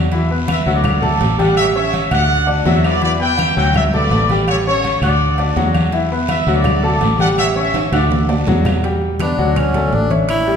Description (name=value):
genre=latin, salsa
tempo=165 BPM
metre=4/4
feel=straight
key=D major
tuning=A4 = 441 Hz
part: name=bright concert grand piano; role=accompaniment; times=0.0-10.6 s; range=E3 to F#6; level=-19 LUFS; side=left 2 dB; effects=none
part: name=fingered electric bass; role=bass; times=0.0-10.6 s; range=A1 to E2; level=-18 LUFS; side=equal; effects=none
part: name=agogo bells and timbales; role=percussion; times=0.1-10.5 s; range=none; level=-25 LUFS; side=right 4 dB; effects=none
part: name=congas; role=percussion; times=0.1-10.6 s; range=none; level=-22 LUFS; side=left 1 dB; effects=none
part: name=guiro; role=percussion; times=0.1-8.8 s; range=none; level=-32 LUFS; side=right 4 dB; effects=none
part: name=bright trumpet section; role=melody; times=0.5-8.3 s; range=A4 to G5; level=-19 LUFS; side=equal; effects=none
part: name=claves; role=percussion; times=0.5-10.5 s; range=none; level=-33 LUFS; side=left 1 dB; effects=none
part: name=clear tenor saxophone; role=melody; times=9.2-10.6 s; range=C#4 to E4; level=-18 LUFS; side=equal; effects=none
room=wet recital hall reverb, RT60 1.8 s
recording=recorded in a church or concert hall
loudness=-13 LUFS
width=side -7 dB against mid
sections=0.0-8.8 A section; 8.8-10.6 B section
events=drum fill 7.7-8.8; tenor saxophone solo 8.8-10.6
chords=0.1 E5; 0.8 D; 1.6 A7; 2.3 D; 3.0 Em7; 3.7 D; 4.5 A7; 5.2 D; 5.9 E5; 6.7 D; 7.4 A7; 8.1 D; 8.8 Em7; 9.6 D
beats=| 0.12 0.48 0.84 1.21 | 1.57 1.93 2.30 2.66 | 3.02 3.39 3.75 4.11 | 4.47 4.84 5.20 5.56 | 5.93 6.29 6.65 7.02 | 7.38 7.74 8.11 8.47 | 8.83 9.20 9.56 9.93 | 10.29